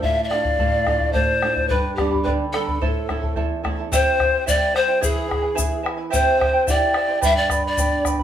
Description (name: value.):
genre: andean folk, Andean ensemble.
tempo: 109 BPM.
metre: 2/4.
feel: straight.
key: unclear.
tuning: A4 = 441 Hz.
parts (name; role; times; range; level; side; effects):
breathy bright pan flute; melody; 0.0-8.0 s; G4 to E5; -21 LUFS; left 1 dB; none.
breathy mellow large quena; second line; 0.0-8.0 s; G4 to G5; -27 LUFS; left 7 dB; none.
charango; accompaniment; 0.0-8.2 s; E4 to B5; -25 LUFS; right 5 dB; none.
flamenco guitar; accompaniment; 0.0-8.2 s; E2 to G#4; -28 LUFS; right 4 dB; none.
bombo; percussion; 0.0-8.2 s; none; -24 LUFS; left 1 dB; none.
egg shaker; percussion; 3.9-8.2 s; none; -30 LUFS; left 7 dB; none.
room: moderate studio reverb, RT60 0.6 s.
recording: studio reverb.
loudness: -18 LUFS.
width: side -10 dB against mid.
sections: 0.0-3.9 A section; 3.9-8.2 B section.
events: none.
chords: 0.0 Dm; 1.7 G; 2.8 Am; 3.9 C; 5.0 E; 6.1 C; 7.2 G.